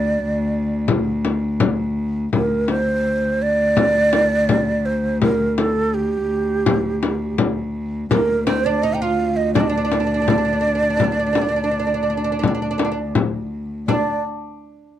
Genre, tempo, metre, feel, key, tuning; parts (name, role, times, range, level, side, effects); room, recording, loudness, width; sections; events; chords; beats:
Arabic maqam ensemble; 83 BPM; 4/4; straight; D maqam kurd; A4 = 440 Hz
breathy ney; melody; 0.0-14.2 s; G4 to G5; -20 LUFS; right 3 dB
rich cello; drone; 0.0-14.0 s; D2; -23 LUFS; left 1 dB
frame drum; percussion; 0.9-14.2 s; -20 LUFS; left 4 dB
oud; second line; 8.1-14.2 s; Bb3 to F4; -24 LUFS; right 4 dB
moderate small room reverb, RT60 0.5 s; dark, warm production; -17 LUFS; side -11 dB against mid
0.0-2.3 A section; 2.3-13.9 B section; 13.9-15.0 C section
0.16 0.88 1.60 | 2.33 3.05 3.77 4.49 | 5.22 5.94 6.66 7.38 | 8.11 8.83 9.55 10.28 | 11.00 11.72 12.44 13.16 | 13.89